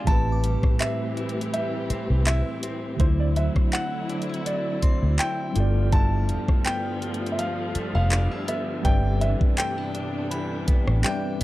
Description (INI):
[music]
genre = contemporary R&B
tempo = 82 BPM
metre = 4/4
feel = swing 54% on 16ths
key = A minor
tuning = A4 = 440 Hz
[part]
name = dark concert grand piano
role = melody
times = 0.0-11.4 s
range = C5 to A5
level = -31 LUFS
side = equal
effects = analog delay
[part]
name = mellow tine electric piano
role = accompaniment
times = 0.0-11.4 s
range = A2 to E5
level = -31 LUFS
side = equal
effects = medium stereo tremolo
[part]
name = warm studio string section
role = sustained chords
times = 0.0-11.4 s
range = C3 to G4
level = -33 LUFS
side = equal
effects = none
[part]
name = direct-recorded clean electric guitar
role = arpeggios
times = 0.0-11.4 s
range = G2 to F4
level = -33 LUFS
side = left 2 dB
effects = none
[part]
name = vintage muted fingered electric bass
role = bass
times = 0.1-11.4 s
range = F1 to D2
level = -22 LUFS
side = equal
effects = transformer saturation
[part]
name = smooth R&B drum kit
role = drums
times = 0.1-11.4 s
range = handclaps, hi-hat, kick drum, rim click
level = -23 LUFS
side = equal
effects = none
[part]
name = glassy synth bell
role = texture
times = 0.1-5.9, 10.3-11.4 s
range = G5 to D6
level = -43 LUFS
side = equal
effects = chorus, analog delay
[sound]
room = digital ambience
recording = dry, gritty hardware recording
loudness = -22 LUFS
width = side -17 dB against mid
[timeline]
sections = 0.1-11.4 A section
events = none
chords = 0.1 Am7; 3.0 D9; 5.6 G13; 8.9 Cmaj9/G